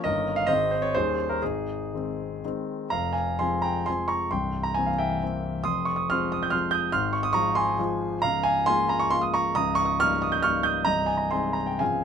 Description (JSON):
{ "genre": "classical, romantic triple-time dance for piano with dotted rhythms", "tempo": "112-153 BPM", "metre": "3/4", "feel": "rubato", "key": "F minor, Ab major from 8.2 s", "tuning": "A4 = 440 Hz", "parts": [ { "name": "warm concert grand piano", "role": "solo", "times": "0.0-12.0 s", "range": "C1 to G6", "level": "-23 LUFS", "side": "equal", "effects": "none" } ], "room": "light reverb", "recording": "minimal, uncompressed stereo recording", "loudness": "-23 LUFS", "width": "side -7 dB against mid", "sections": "0.0-2.9 A section; 2.9-12.0 B section", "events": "none", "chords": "0.0 Eb7/G; 0.5 Ab; 0.9 Eb7; 1.4 Ab; 2.9 Fm; 4.3 C7; 5.7 Fm; 6.9 Fm/Ab; 8.2 Bbm7/Db; 9.5 Eb7/Db; 10.9 Ab/C" }